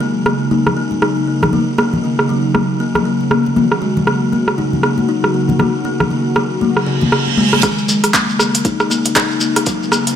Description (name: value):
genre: afro house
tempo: 118 BPM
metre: 4/4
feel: swing 60% on 16ths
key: Eb minor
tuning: A4 = 440 Hz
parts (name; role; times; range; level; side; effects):
- warm analog pad; sustained chords; 0.0-10.2 s; Db3 to Gb4; -20 LUFS; right 2 dB; chorus, sidechain pumping
- buzzing kalimba; arpeggios; 0.0-10.1 s; Db3 to Eb4; -18 LUFS; left 2 dB; sidechain pumping, ping-pong delay
- congas; percussion; 0.0-7.6 s; none; -19 LUFS; left 4 dB; none
- deep house drum kit; drums; 0.3-10.2 s; handclaps, hi-hat, rim click, toms; -18 LUFS; right 1 dB; high-pass filter on snare, low-pass filter on snare, studio reverb, high-pass filter on hats, low-pass filter on hats, high-pass filter on toms, low-pass filter on toms
- reverse cymbal and riser; sound effects; 6.8-10.2 s; none; -22 LUFS; right 5 dB; none
- electronic kick drum; drums; 7.6-9.8 s; none; -22 LUFS; right 1 dB; high-pass filter on kick, studio reverb
- shekere; percussion; 7.6-10.2 s; none; -22 LUFS; left 2 dB; none
room: light reverb, studio ambience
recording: none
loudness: -13 LUFS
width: side -9 dB against mid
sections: 0.0-7.6 A section; 7.6-10.2 B section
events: filter sweep on analog synth pad 0.0-7.6; reverse cymbal 6.8-7.6; build-up 7.6-10.2; riser 7.6-10.2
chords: 0.0 Ebm7